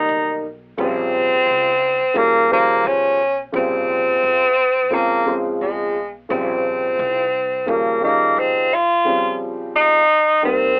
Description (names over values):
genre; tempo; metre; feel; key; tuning
hip hop; 87 BPM; 4/4; swing 58% on 16ths; Bb dorian; A4 = 435 Hz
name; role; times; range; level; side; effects
warm tenor saxophone; melody; 0.0-10.8 s; Ab3 to F4; -19 LUFS; equal; none
dark upright piano; accompaniment; 0.0-10.8 s; Db3 to C5; -24 LUFS; equal; none
upright bass; bass; 0.0-9.0 s; Bb1 to F2; -39 LUFS; equal; tube saturation
room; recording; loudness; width
light reverb; dry, gritty hardware recording, telephone sound; -18 LUFS; mono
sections
0.0-6.3 A section; 6.3-10.8 A section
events
none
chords
0.0 Cm7 (rootless); 0.8 Bbm69; 2.2 Eb9; 3.5 Bbm69; 4.9 Bbm9; 6.3 Bbm69; 7.7 Eb9; 9.1 Dbmaj9#11